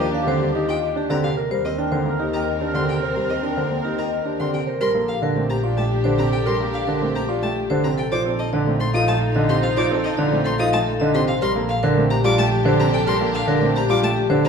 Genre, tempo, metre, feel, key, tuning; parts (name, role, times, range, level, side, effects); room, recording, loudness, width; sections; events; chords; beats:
classical, minimalist pattern music; 109 BPM; 3/4; straight; Bb major from 4.8 s; A4 = 440 Hz
vibraphone with medium hard mallets; melody; 0.0-14.5 s; G4 to A5; -24 LUFS; left 6 dB
clear clarinet; second line; 0.0-14.5 s; D4 to Bb4; -31 LUFS; right 4 dB
dark baby grand piano; accompaniment; 0.0-14.5 s; C3 to C4; -24 LUFS; right 1 dB
warm studio violin section; sustained chords; 0.0-14.5 s; C4 to Bb4; -31 LUFS; left 3 dB
rich violin; arpeggios; 0.0-14.5 s; Eb5 to Eb6; -29 LUFS; left 3 dB
warm concert grand piano; arpeggios; 0.0-14.5 s; C4 to C5; -25 LUFS; right 5 dB
rich symphonic double bass section; bass; 0.0-14.5 s; Bb1 to Eb2; -26 LUFS; right 2 dB
wet recital hall reverb, RT60 1.5 s; recorded in a church or concert hall; -18 LUFS; side -6 dB against mid
0.0-4.8 A section; 4.8-14.5 B section
0.0 Ebmaj9; 1.5 Cm7/Eb; 4.8 Bb69; 8.1 F7/Bb; 11.4 Bb69
0.41 0.96 | 1.51 2.06 2.61 | 3.16 3.71 4.26 | 4.81 5.36 5.91 | 6.46 7.01 7.57 | 8.12 8.67 9.22 | 9.77 10.32 10.87 | 11.42 11.97 12.52 | 13.07 13.62 14.17